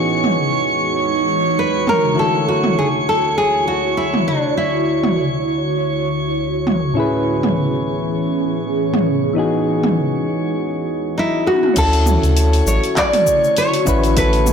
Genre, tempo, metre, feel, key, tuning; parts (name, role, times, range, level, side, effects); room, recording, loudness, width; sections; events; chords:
sunset chillout; 100 BPM; 4/4; swing 56% on 16ths; D lydian; A4 = 440 Hz
soft electric-piano-like synth keys; accompaniment; 0.0-14.5 s; A2 to C#5; -22 LUFS; left 1 dB; chorus, auto-pan, ping-pong delay
ethereal airy pad; sustained chords; 0.0-14.5 s; D2 to C#5; -22 LUFS; right 1 dB; ensemble chorus, built-in reverb
drifting glass-harmonics texture; texture; 0.0-14.5 s; C#5 to C#6; -24 LUFS; right 4 dB; chorus, built-in reverb
deep house drum kit; drums; 0.2-14.5 s; crash cymbal, handclaps, hi-hat, shaker, toms; -21 LUFS; equal; low-pass filter on toms, low-pass filter on hats, low-pass filter on cymbals, low-pass filter on perc, low-pass filter on snare, low-pass filter on room
nylon-string guitar; melody; 1.6-6.3, 11.2-14.5 s; D4 to D5; -18 LUFS; equal; tape echo
warm sub bass; bass; 11.8-14.5 s; A1 to D2; -16 LUFS; equal
electronic kick drum; drums; 11.8-14.3 s; -23 LUFS; equal
wet recital hall reverb, RT60 1.6 s, digital ambience; blown-out, overdriven recording, overdrive; -15 LUFS; side -6 dB against mid
0.0-11.8 A section; 11.8-14.5 B section
filter sweep on drum 0.0-11.8; drum fill 11.5-11.8
0.0 Emaj9; 2.2 Dmaj9; 7.0 Amaj9; 9.4 Emaj9; 11.8 Dmaj9